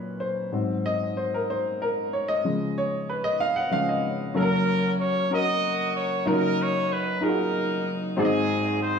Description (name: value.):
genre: gospel.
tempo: 63 BPM (dotted quarters).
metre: 6/8.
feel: straight.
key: F# major.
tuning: A4 = 440 Hz.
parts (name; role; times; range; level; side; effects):
warm baby grand piano; accompaniment; 0.0-9.0 s; F#1 to F#5; -24 LUFS; left 1 dB; none.
mellow horn section; melody; 4.4-9.0 s; B#3 to D#5; -25 LUFS; right 1 dB; none.
room: moderate large studio reverb, RT60 1.2 s.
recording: studio reverb.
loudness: -23 LUFS.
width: side -6 dB against mid.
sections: 0.0-4.4 A section; 4.4-9.0 B section.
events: grand piano solo 0.0-4.4.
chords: 0.0 F#6; 0.5 G#7; 2.4 C#; 4.4 F#; 6.3 D#m/F#; 8.2 G#7.